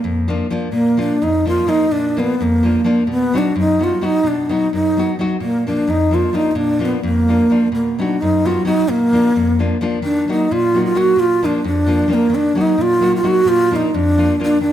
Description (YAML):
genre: balkan folk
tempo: 259 BPM (eighths)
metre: 5/8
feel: straight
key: unclear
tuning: A4 = 442 Hz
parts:
  - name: breathy mellow low ney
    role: melody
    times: 0.0-14.7 s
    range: Bb3 to Gb4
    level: -15 LUFS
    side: right 1 dB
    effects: none
  - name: nylon-string guitar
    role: accompaniment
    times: 0.0-14.7 s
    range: F2 to F#4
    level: -19 LUFS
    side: left 2 dB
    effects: none
room: wet recital hall reverb, RT60 1.6 s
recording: none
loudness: -14 LUFS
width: side -11 dB against mid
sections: 0.7-10.0 A section; 10.0-14.7 B section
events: none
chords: 0.0 Bb; 3.1 B; 5.4 Bb; 7.7 B; 8.9 Bb; 10.0 Ebm; 11.2 Bb; 12.3 Ebm; 13.5 Bb